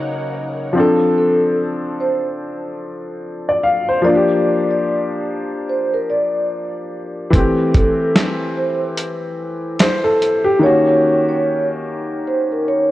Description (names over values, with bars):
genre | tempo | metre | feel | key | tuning
lo-fi hip hop | 73 BPM | 4/4 | swing 59% on 16ths | D minor | A4 = 441 Hz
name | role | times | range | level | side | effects
clear upright piano | accompaniment | 0.0-12.9 s | Db3 to F5 | -17 LUFS | left 1 dB | cassette tape, low-pass filter
string machine, violas | sustained chords | 0.0-0.7 s | Eb4 to Gb5 | -32 LUFS | right 1 dB | ensemble chorus, low-pass filter
vibraphone with soft mallets | melody | 1.2-12.9 s | A4 to D5 | -19 LUFS | equal | low-pass filter
dusty soul sampler-style drum kit | drums | 7.3-10.4 s | hi-hat, kick drum, snare drum | -15 LUFS | equal | none
room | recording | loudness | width
moderate plate reverb, RT60 2.6 s | worn, warbling old tape, cassette tape, warbly pitch drift | -15 LUFS | side -15 dB against mid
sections
0.8-12.9 A section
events
break 0.0-0.8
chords
0.0 Ebm7; 0.8 Dm7; 4.0 Gm7; 7.3 Am7; 10.6 Ebm7